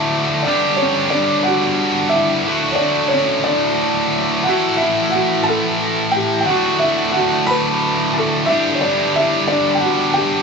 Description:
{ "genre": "rock", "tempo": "60 BPM (dotted quarters)", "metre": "6/8", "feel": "straight", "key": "D major", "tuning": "A4 = 441 Hz", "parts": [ { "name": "felt-muted upright piano", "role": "melody", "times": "0.0-10.4 s", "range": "C#4 to B5", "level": "-18 LUFS", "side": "equal", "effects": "tape echo" }, { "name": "heavy high-gain guitar", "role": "riff", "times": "0.0-10.4 s", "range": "D2 to A4", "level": "-17 LUFS", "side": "equal", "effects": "distortion" } ], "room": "moderate large studio reverb, RT60 1.2 s", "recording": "band playing live in one room, nothing above 7.7 kHz", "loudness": "-14 LUFS", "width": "side -4 dB against mid", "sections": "0.0-10.4 A section", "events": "none", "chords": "0.5 G; 2.5 D; 4.5 A5; 6.5 D; 8.5 G" }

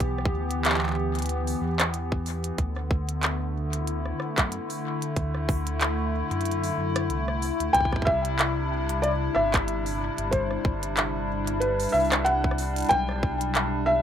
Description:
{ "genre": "IDM", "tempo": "93 BPM", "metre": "4/4", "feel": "swing 56% on 16ths", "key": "unclear", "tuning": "A4 = 445 Hz", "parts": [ { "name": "hollow soft pad", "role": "sustained chords", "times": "0.0-14.0 s", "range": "C3 to G4", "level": "-29 LUFS", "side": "left 1 dB", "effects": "chorus, sidechain pumping" }, { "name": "dark detuned saw bass", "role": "bass", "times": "0.0-14.0 s", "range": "G1 to F#2", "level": "-30 LUFS", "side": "equal", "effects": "none" }, { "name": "electronic kick drum", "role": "drums", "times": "0.0-13.4 s", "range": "none", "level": "-26 LUFS", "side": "equal", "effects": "none" }, { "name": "glitchy drum kit", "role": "drums", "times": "0.0-13.7 s", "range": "handclaps, hi-hat, rim click", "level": "-28 LUFS", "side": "equal", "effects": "none" }, { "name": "felt-muted upright piano", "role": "melody", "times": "7.7-14.0 s", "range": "B4 to G5", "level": "-26 LUFS", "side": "equal", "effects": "ping-pong delay" } ], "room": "light reverb", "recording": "rough home demo mix", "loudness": "-24 LUFS", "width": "side -9 dB against mid", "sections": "0.0-14.0 A section", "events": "none", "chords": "0.0 G/B; 2.6 D; 7.7 C; 12.9 G/B" }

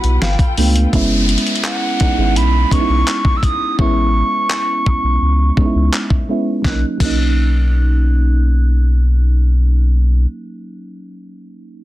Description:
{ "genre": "contemporary R&B", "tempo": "84 BPM", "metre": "4/4", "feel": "straight", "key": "B major", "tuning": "A4 = 440 Hz", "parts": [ { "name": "concert flute", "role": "melody", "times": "0.0-10.3 s", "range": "F#5 to F#6", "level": "-21 LUFS", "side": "right 1 dB", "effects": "low-pass filter, tape echo" }, { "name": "mellow FM electric piano", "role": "accompaniment", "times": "0.0-11.8 s", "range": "F#3 to G5", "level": "-21 LUFS", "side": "right 2 dB", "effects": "chorus, phaser, low-pass filter" }, { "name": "rich studio string section", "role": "sustained chords", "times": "0.0-0.9 s", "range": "G3 to G5", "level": "-27 LUFS", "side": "left 5 dB", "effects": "sidechain pumping" }, { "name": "warm sub bass", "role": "bass", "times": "0.0-10.3 s", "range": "F#1 to C#2", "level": "-14 LUFS", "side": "equal", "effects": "none" }, { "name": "dusty soul sampler-style drum kit", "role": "drums", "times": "0.0-7.2 s", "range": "crash cymbal, handclaps, hi-hat, kick drum, snare drum", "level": "-17 LUFS", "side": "equal", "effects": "none" }, { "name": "glassy synth bell", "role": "texture", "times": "0.0-0.5 s", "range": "none", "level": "barely audible", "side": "none", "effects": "none" }, { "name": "downlifter", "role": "sound effects", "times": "0.9-6.6 s", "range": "none", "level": "-25 LUFS", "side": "equal", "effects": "none" } ], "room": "little or no reverb", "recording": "dense, heavily limited modern master", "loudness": "-13 LUFS", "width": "side -16 dB against mid", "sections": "0.9-6.6 A section; 6.6-9.5 B section", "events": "FM electric piano fill 0.0-0.9; filter sweep 0.9-6.6", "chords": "0.2 G9; 0.9 F#7sus4; 3.8 Amaj7; 6.6 Bmaj7" }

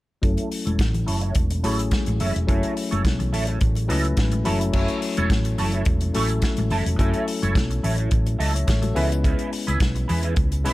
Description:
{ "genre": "disco", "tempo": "106 BPM", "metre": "4/4", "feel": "straight", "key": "F# minor", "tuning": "A4 = 442 Hz", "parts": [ { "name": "bright tine electric piano", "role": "accompaniment", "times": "0.2-10.7 s", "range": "F#3 to E5", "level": "-27 LUFS", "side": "left 3 dB", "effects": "low-pass filter" }, { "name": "electric guitar at the edge of break-up", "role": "accompaniment", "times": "0.2-10.7 s", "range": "E4 to D#5", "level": "-30 LUFS", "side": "right 4 dB", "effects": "wah, ensemble chorus, low-pass filter" }, { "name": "hollow-body short-scale fingered electric bass", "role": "bass", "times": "0.2-10.7 s", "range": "E1 to E2", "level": "-24 LUFS", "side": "equal", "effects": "none" }, { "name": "warm soul drum kit", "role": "drums", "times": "0.2-10.7 s", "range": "crash cymbal, hi-hat, kick drum, snare drum", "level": "-24 LUFS", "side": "equal", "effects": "none" }, { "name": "congas", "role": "percussion", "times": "0.4-10.7 s", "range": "none", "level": "-32 LUFS", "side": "left 3 dB", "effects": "none" } ], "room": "little or no reverb", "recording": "none", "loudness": "-20 LUFS", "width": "side -18 dB against mid", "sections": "0.2-4.7 A section; 4.7-10.7 B section", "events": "filter sweep 0.2-4.7", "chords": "0.2 F#m7; 9.0 C#m7" }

